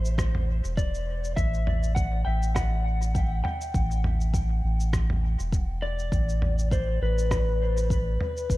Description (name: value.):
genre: ambient dub.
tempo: 101 BPM.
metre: 4/4.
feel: swing 55% on 16ths.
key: A dorian.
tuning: A4 = 440 Hz.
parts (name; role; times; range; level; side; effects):
electric slide guitar; melody; 0.0-8.6 s; B4 to G5; -32 LUFS; left 3 dB; dub echo.
soft dub sub bass; bass; 0.0-8.6 s; E1 to A1; -25 LUFS; equal; tube saturation.
lo-fi sampler-style drum kit; drums; 0.0-8.6 s; rim click, shaker, toms; -34 LUFS; equal; small room ambience.
electronic kick drum; drums; 0.2-8.6 s; none; -27 LUFS; equal; small room ambience.
room: digital ambience.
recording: dark, warm production.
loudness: -24 LUFS.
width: side -17 dB against mid.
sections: 0.0-8.6 A section.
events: none.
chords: 0.0 A5.